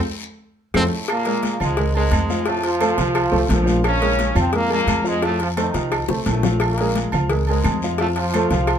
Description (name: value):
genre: latin, salsa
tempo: 174 BPM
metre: 4/4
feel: straight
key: Bb minor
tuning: A4 = 439 Hz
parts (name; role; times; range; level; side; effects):
- upright bass; bass; 0.7-8.8 s; Bb1 to F2; -22 LUFS; equal; none
- claves; percussion; 0.7-8.8 s; none; -33 LUFS; right 8 dB; none
- congas; percussion; 0.7-8.8 s; none; -30 LUFS; left 3 dB; none
- cowbell and bongos; percussion; 0.7-8.8 s; none; -28 LUFS; left 5 dB; none
- bright trumpet; melody; 0.8 s; C4; -24 LUFS; equal; none
- brilliant trombone section; melody; 0.8-8.8 s; Ab2 to F4; -23 LUFS; equal; none
- warm upright piano; accompaniment; 0.8-8.8 s; F3 to F5; -24 LUFS; equal; none
- guiro; percussion; 0.8-8.8 s; none; -35 LUFS; left 6 dB; none
- timbales and agogo bells; percussion; 0.8-8.8 s; none; -28 LUFS; right 4 dB; none
room: light reverb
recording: minimal, uncompressed stereo recording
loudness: -17 LUFS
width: side -8 dB against mid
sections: 0.0-1.1 A section; 1.1-8.8 B section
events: band accent 0.0-1.1; drum fill 0.1-1.1, 6.1-6.6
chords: 0.0 F; 1.1 Bbm7; 2.5 F; 3.8 Bbm7; 5.2 F7; 6.6 Bbm7; 8.0 F